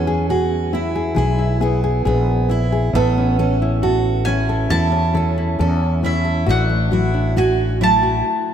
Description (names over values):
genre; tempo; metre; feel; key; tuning
acoustic folk duo or small band; 68 BPM; 4/4; straight; A major; A4 = 441 Hz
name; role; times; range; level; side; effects
mandolin; melody; 0.0-8.5 s; E5 to A5; -23 LUFS; right 2 dB; none
nylon-string guitar; accompaniment; 0.0-8.5 s; A2 to A4; -22 LUFS; left 4 dB; none
picked steel-string acoustic guitar; arpeggios; 0.0-8.2 s; B3 to F#4; -22 LUFS; right 4 dB; none
fretless electric bass; bass; 0.0-8.2 s; A1 to E2; -19 LUFS; equal; none
room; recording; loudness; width
moderate cathedral reverb, RT60 4.8 s; in a vast, echoing space; -15 LUFS; side -9 dB against mid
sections
0.0-8.5 A section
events
stop 8.3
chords
0.0 E; 2.9 A; 6.5 D/A